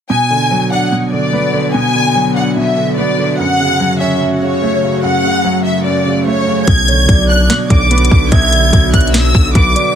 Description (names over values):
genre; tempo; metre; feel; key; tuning
hip hop, trap; 146 BPM; 4/4; half-time; B dorian; A4 = 438 Hz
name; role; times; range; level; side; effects
dark studio violin section; melody; 0.1-9.9 s; C#5 to G#6; -15 LUFS; left 1 dB; none
warm baby grand piano; accompaniment; 0.1-10.0 s; F#2 to D4; -16 LUFS; right 2 dB; none
glassy FM pad; sustained chords; 1.1-10.0 s; C#3 to F#4; -20 LUFS; left 2 dB; ensemble chorus, built-in reverb
distorted 808-style bass; bass; 6.7-9.7 s; B1; -14 LUFS; equal; distortion
trap drum kit; drums; 6.7-9.9 s; hi-hat, kick drum, snare drum; -12 LUFS; equal; vintage 12-bit sampler grit
gliding portamento lead; second line; 6.9-10.0 s; C#5 to E5; -22 LUFS; right 4 dB; chorus, digital delay
room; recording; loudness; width
little or no reverb; dense, heavily limited modern master; -10 LUFS; side -9 dB against mid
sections
0.1-6.7 A section; 6.7-10.0 B section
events
none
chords
0.1 Bm; 3.4 F#m; 6.7 Bm